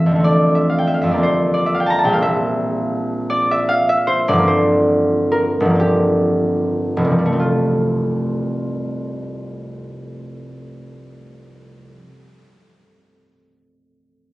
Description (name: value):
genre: classical, solo harp piece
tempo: 35-60 BPM (dotted quarters)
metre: 6/8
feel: rubato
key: F major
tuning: A4 = 440 Hz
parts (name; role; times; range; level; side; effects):
- concert harp; solo; 0.0-12.3 s; F1 to Bb5; -16 LUFS; equal; none
room: wet recital hall reverb, RT60 1.5 s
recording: recorded on a phone in the room, studio ambience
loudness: -15 LUFS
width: side -18 dB against mid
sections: 0.0-7.4 A section; 7.4-13.3 B section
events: slowing down 1.2-7.4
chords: 0.2 Dm7/F; 1.2 Gm11/F; 2.2 Bb69; 4.5 Gm7; 7.4 Fadd9